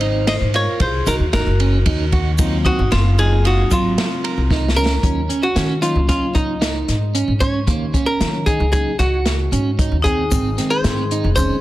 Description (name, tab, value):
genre	progressive instrumental, band music in an uneven meter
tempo	114 BPM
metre	5/4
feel	straight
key	Eb dorian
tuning	A4 = 440 Hz
part	archtop guitar, miked and amplified	melody	0.0-11.6 s	Eb4 to Eb5	-22 LUFS	equal	digital delay
part	vibraphone with hard mallets	second line	0.0-4.7, 10.0-11.6 s	C4 to C5	-26 LUFS	left 3 dB	digital delay
part	clean electric guitar	arpeggios	0.0-11.6 s	Gb3 to Bb4	-24 LUFS	right 5 dB	spring reverb, digital delay
part	upright bass	bass	0.0-11.5 s	F1 to Eb3	-19 LUFS	equal	none
part	open jazz drum kit	drums	0.0-11.5 s	hi-hat, kick drum, ride cymbal, snare drum	-21 LUFS	equal	none
part	egg shaker	percussion	1.1-4.9, 10.3-11.6 s	none	-33 LUFS	left 5 dB	none
part	tine electric piano	accompaniment	2.4-11.6 s	Eb3 to F4	-27 LUFS	left 4 dB	none
room	studio reverb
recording	dense, heavily limited modern master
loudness	-15 LUFS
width	side -16 dB against mid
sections	0.0-5.0 A section; 5.0-11.6 B section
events	drum fill 4.5-5.0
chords	0.0 Ab13; 5.0 Ebm7; 10.3 Ab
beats	0.28 0.81 1.34 1.86 | 2.39 2.92 3.45 3.98 4.50 | 5.03 5.56 6.09 6.62 7.15 | 7.68 8.21 8.73 9.26 9.79 | 10.32 10.85 11.38